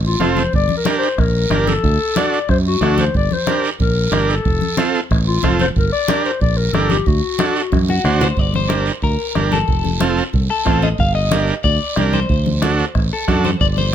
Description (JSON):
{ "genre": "latin, cumbia", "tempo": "184 BPM", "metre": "4/4", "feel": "straight", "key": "G minor", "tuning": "A4 = 441 Hz", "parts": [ { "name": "fingered electric bass", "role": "bass", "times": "0.0-13.9 s", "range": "F1 to F#2", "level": "-18 LUFS", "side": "equal", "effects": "none" }, { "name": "breathy clarinet", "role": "second line", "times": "0.1-8.1 s", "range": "F4 to D5", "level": "-20 LUFS", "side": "left 6 dB", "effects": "none" }, { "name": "combo organ", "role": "accompaniment", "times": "0.2-13.9 s", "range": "C4 to C5", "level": "-20 LUFS", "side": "right 5 dB", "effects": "none" }, { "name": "bombo", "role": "percussion", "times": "0.2-13.8 s", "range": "none", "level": "-21 LUFS", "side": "right 1 dB", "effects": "none" }, { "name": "congas", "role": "percussion", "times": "0.2-13.9 s", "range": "none", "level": "-23 LUFS", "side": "left 3 dB", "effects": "none" }, { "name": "guiro", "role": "percussion", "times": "0.2-13.9 s", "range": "none", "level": "-28 LUFS", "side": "right 7 dB", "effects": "none" }, { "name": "electric guitar at the edge of break-up", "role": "melody", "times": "7.9-13.9 s", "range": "F#4 to F5", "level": "-22 LUFS", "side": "left 4 dB", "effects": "spring reverb, slapback echo" } ], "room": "light reverb", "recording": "close, detailed microphones", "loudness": "-14 LUFS", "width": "side -9 dB against mid", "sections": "0.0-8.4 A section; 8.4-13.9 B section", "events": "clarinet solo 0.0-8.4; drum fill 7.7-8.4", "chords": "0.0 F; 0.5 Gm; 1.8 D; 3.1 Gm; 4.5 F; 5.8 Gm; 7.1 D7; 8.4 Gm; 9.7 F; 11.0 Gm; 12.3 D7", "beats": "0.20 | 0.53 0.86 1.18 1.51 | 1.84 2.17 2.49 2.82 | 3.15 3.47 3.80 4.13 | 4.45 4.78 5.11 5.43 | 5.76 6.09 6.41 6.74 | 7.07 7.39 7.72 8.05 | 8.37 8.70 9.03 9.36 | 9.68 10.01 10.34 10.66 | 10.99 11.32 11.64 11.97 | 12.30 12.63 12.95 13.28 | 13.61 13.94" }